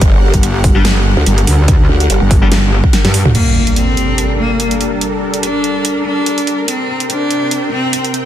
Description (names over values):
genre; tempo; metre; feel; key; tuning
heavy wobble dubstep; 144 BPM; 4/4; swing 55% on 16ths, half-time; G harmonic minor; A4 = 435 Hz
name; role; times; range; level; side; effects
supersaw pad; sustained chords; 0.0-8.3 s; C3 to G5; -20 LUFS; equal; sidechain pumping
growl bass; bass; 0.0-3.3 s; G1 to D2; -13 LUFS; equal; chorus, overdrive
dubstep drum kit; drums; 0.0-8.2 s; crash cymbal, hi-hat, snare drum, toms; -17 LUFS; right 1 dB; none
electronic kick drum; drums; 0.0-2.9 s; none; -11 LUFS; equal; none
metallic wobble bass; bass; 0.3-3.2 s; G1 to G2; -12 LUFS; equal; chorus, overdrive
distorted electric guitar; stabs; 0.8-2.5 s; G3 to G4; -22 LUFS; left 4 dB; none
clear cello; melody; 3.3-8.0 s; Bb3 to D4; -16 LUFS; left 1 dB; ping-pong delay
impact; sound effects; 3.3-5.0 s; none; -17 LUFS; equal; none
room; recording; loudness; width
light reverb, digital ambience; dense, heavily limited modern master; -10 LUFS; side -11 dB against mid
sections
0.0-3.3 A section; 3.3-8.3 B section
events
drop 0.0-3.3; drum fill 2.9-3.3; impact 3.3-5.0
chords
0.0 Gm; 3.3 Gmadd9; 6.7 C5